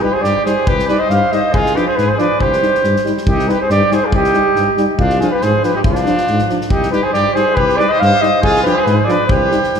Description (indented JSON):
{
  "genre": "balkan folk, Balkan brass band",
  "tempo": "139 BPM",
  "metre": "2/4",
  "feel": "swing 54% on 16ths",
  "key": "C harmonic minor",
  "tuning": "A4 = 445 Hz",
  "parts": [
    { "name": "mellow flugelhorn", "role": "melody", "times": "0.0-9.8 s", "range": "F4 to F5", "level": "-15 LUFS", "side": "right 1 dB", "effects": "none" },
    { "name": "bright trumpet", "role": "second line", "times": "0.0-9.8 s", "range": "D4 to C5", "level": "-21 LUFS", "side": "left 1 dB", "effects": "none" },
    { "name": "dark euphonium", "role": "accompaniment", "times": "0.0-9.6 s", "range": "D4 to Eb4", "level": "-23 LUFS", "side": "left 4 dB", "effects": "none" },
    { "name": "warm euphonium", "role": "accompaniment", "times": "0.0-9.6 s", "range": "F3 to G3", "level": "-23 LUFS", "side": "right 4 dB", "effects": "none" },
    { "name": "mellow tuba", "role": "bass", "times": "0.0-9.8 s", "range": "C2 to Ab2", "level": "-20 LUFS", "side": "left 1 dB", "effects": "none" },
    { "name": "natural country drum kit", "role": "percussion", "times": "0.2-9.8 s", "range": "kick drum, snare drum", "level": "-21 LUFS", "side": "equal", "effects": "none" }
  ],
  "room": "wet church reverb, RT60 3.0 s",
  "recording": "recorded in a church or concert hall",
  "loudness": "-12 LUFS",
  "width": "side -7 dB against mid",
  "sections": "0.0-3.3 A section; 3.3-9.8 A section",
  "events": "none",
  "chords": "0.0 Cm; 1.5 Ddim/C; 2.4 Cm; 5.0 Ddim/C; 6.7 Cm; 8.4 Ddim/C; 9.3 Cm"
}